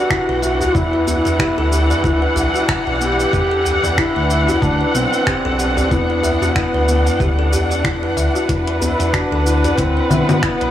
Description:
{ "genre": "organic downtempo", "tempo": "93 BPM", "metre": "4/4", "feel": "swing 57% on 16ths", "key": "E minor", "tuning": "A4 = 440 Hz", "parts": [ { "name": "mellow duduk", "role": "melody", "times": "0.0-10.7 s", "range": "B3 to G4", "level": "-21 LUFS", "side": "equal", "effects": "tape echo" }, { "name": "warm studio string section", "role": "sustained chords", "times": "0.0-10.7 s", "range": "E3 to F#5", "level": "-21 LUFS", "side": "equal", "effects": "sidechain pumping" }, { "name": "kalimba", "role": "arpeggios", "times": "0.0-10.7 s", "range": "B3 to E5", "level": "-21 LUFS", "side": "left 1 dB", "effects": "tape echo" }, { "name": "afro-pop drum kit", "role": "drums", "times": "0.1-10.7 s", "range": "congas, finger snaps, hi-hat, shaker", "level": "-23 LUFS", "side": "left 1 dB", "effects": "soft clipping on snare" }, { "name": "electronic kick drum", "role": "drums", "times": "0.1-10.6 s", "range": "none", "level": "-22 LUFS", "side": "equal", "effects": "none" }, { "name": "smooth synth bass", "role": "bass", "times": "0.3-10.7 s", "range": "B1 to E2", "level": "-20 LUFS", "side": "equal", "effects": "tube saturation" }, { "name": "djembe", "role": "percussion", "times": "0.4-9.9 s", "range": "none", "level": "-28 LUFS", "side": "right 2 dB", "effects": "none" } ], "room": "light reverb, studio reverb", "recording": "blown-out, overdriven recording, overdrive, small room ambience", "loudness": "-14 LUFS", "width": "side -11 dB against mid", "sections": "0.0-10.7 A section", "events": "none", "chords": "0.0 Em7; 8.5 Bm" }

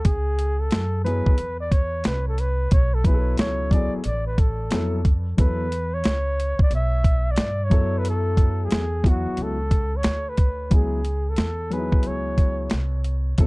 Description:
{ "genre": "hip hop, jazz-hop", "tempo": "90 BPM", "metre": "4/4", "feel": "swing 65% on 16ths", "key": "unclear", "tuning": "A4 = 441 Hz", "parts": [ { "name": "breathy flugelhorn", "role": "melody", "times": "0.0-12.7 s", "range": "F#4 to E5", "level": "-28 LUFS", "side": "equal", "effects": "analog delay" }, { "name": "upright bass", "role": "bass", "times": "0.0-13.5 s", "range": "A1 to G2", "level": "-25 LUFS", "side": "equal", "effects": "none" }, { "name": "boom bap sampler-style drum kit", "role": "drums", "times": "0.0-13.5 s", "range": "hi-hat, kick drum, snare drum", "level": "-19 LUFS", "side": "equal", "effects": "none" }, { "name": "dark baby grand piano", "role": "accompaniment", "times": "1.0-13.5 s", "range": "F#3 to A4", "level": "-27 LUFS", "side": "left 2 dB", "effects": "none" } ], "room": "little or no reverb", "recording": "dark, warm production", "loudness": "-20 LUFS", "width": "side -24 dB against mid", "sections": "0.0-10.7 A section; 10.7-13.5 B section", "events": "flugelhorn solo 0.0-10.7", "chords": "0.0 C#m7; 2.7 Bsus2; 5.4 E5; 7.7 F#m7; 10.7 C#m7" }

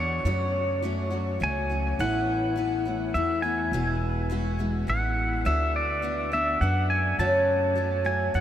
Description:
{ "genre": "acoustic folk duo or small band", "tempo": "104 BPM", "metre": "3/4", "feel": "straight", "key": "unclear", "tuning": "A4 = 440 Hz", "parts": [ { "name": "pedal steel guitar", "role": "melody", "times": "0.0-8.4 s", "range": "C#5 to A5", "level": "-28 LUFS", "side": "equal", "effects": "analog delay" }, { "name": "picked steel-string acoustic guitar", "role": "accompaniment", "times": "0.0-8.4 s", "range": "E2 to F#4", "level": "-28 LUFS", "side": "left 1 dB", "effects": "wide subtle chorus" }, { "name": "upright bass", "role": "bass", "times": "0.0-8.4 s", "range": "E1 to F#2", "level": "-29 LUFS", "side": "equal", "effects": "none" } ], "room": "wet huge ambient reverb, RT60 9.1 s", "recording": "dreamy mix soaked in reverb", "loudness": "-23 LUFS", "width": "side -10 dB against mid", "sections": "0.0-8.4 A section", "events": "none", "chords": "0.2 F#m; 2.0 Asus2; 3.7 Eadd9; 5.5 Bm/D; 7.2 F#m" }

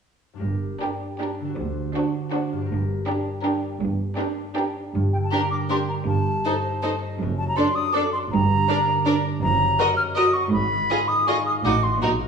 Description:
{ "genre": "cinematic, playful, whimsical film cue", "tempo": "161 BPM", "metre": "3/4", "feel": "straight", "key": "G minor", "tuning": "A4 = 441 Hz", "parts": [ { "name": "concert harp", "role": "arpeggios", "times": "0.3-12.3 s", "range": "F#2 to Bb5", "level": "-29 LUFS", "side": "left 2 dB", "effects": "none" }, { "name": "rich studio cello section", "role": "bass", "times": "0.4-12.3 s", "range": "D2 to Bb2", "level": "-27 LUFS", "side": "right 3 dB", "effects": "none" }, { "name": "rich studio double bass section", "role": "bass", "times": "0.4-12.3 s", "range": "F#1 to D2", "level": "-28 LUFS", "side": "right 4 dB", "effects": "none" }, { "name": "clear studio violin section", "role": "melody", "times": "0.8-12.1 s", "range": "Bb4 to Eb5", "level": "-32 LUFS", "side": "left 2 dB", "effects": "none" }, { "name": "rich studio violin section", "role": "second line", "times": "0.8-12.1 s", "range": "F#4 to Bb4", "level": "-30 LUFS", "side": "equal", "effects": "none" }, { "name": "rich studio viola section", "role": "accompaniment", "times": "0.8-12.1 s", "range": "D4 to Gb4", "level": "-27 LUFS", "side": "right 3 dB", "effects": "none" }, { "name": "concert flute", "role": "second line", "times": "5.1-12.1 s", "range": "G5 to F6", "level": "-23 LUFS", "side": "equal", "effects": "none" } ], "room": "wet recital hall reverb, RT60 1.3 s", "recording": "none", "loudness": "-20 LUFS", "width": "side -6 dB against mid", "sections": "0.4-4.9 A section; 4.9-12.3 B section", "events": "none", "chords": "0.4 Gm; 1.6 D7; 2.7 Gm; 6.1 Am7b5/G; 7.2 D7/F#; 8.3 Gm; 9.4 Ebm/Gb; 10.5 Fm7b5/Ab; 11.7 Adim7" }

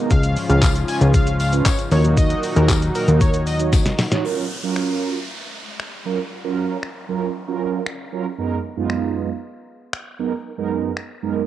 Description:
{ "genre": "dance-pop", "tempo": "116 BPM", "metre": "4/4", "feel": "straight", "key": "F# major", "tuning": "A4 = 439 Hz", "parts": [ { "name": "mellow synth brass", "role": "accompaniment", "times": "0.0-11.4 s", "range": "F#2 to C#5", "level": "-24 LUFS", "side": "right 7 dB", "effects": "chorus, sidechain pumping, cassette tape" }, { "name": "warm analog pad", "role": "sustained chords", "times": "0.0-4.2 s", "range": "G#2 to F#4", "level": "-26 LUFS", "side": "left 1 dB", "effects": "chorus, tremolo, sidechain pumping, cassette tape" }, { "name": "octave-doubled lead", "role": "melody", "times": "0.1-3.6 s", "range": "A#4 to G#5", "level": "-26 LUFS", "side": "left 1 dB", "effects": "chorus, sidechain pumping, cassette tape, analog delay" }, { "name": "plucky analog bass", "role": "bass", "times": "0.1-3.9 s", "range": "C#2 to D#2", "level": "-17 LUFS", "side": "left 1 dB", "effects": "sidechain pumping" }, { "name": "detuned 8-bit digital drum machine", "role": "drums", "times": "0.1-11.1 s", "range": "finger snaps, handclaps, hi-hat, kick drum, shaker, snare drum", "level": "-20 LUFS", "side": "left 1 dB", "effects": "cassette tape" }, { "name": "tambourine", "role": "percussion", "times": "0.4-4.1 s", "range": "none", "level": "-35 LUFS", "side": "left 13 dB", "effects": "none" }, { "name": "downlifter", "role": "sound effects", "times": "4.2-8.4 s", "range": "none", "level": "-34 LUFS", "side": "right 1 dB", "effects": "none" } ], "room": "light reverb, digital ambience", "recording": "home recording on cassette", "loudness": "-18 LUFS", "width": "side -12 dB against mid", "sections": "0.0-4.2 A section; 4.2-11.5 B section", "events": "drop 0.0-4.2; drum fill 3.7-4.2", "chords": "0.1 C#; 1.9 D#m; 4.2 F#maj7; 8.4 G#madd9/F#" }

